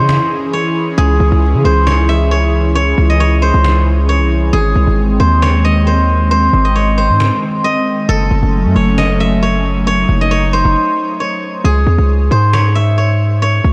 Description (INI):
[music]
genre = hip hop, trap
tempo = 135 BPM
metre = 4/4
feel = half-time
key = C# harmonic minor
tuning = A4 = 441 Hz
[part]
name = steel-string zither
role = melody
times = 0.0-13.7 s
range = G#4 to E5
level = -18 LUFS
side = equal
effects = low-pass filter, tape echo
[part]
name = airy breathy pad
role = sustained chords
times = 0.0-11.6 s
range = D#3 to G#4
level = -20 LUFS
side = equal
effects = chorus
[part]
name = distorted 808-style bass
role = bass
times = 0.0-13.7 s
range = F#1 to C#3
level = -15 LUFS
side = equal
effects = distortion
[part]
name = cajon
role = drums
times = 0.1-12.6 s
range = none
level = -28 LUFS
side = equal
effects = vintage 12-bit sampler grit
[sound]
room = moderate huge ambient reverb, RT60 8.1 s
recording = dreamy mix soaked in reverb, vinyl crackle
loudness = -13 LUFS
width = mono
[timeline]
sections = 0.0-11.6 A section; 11.6-13.7 B section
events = break 10.8-11.6; hi-hats muted 11.6-13.7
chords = 0.0 C#m; 4.5 G#; 8.1 F#m; 11.6 C#m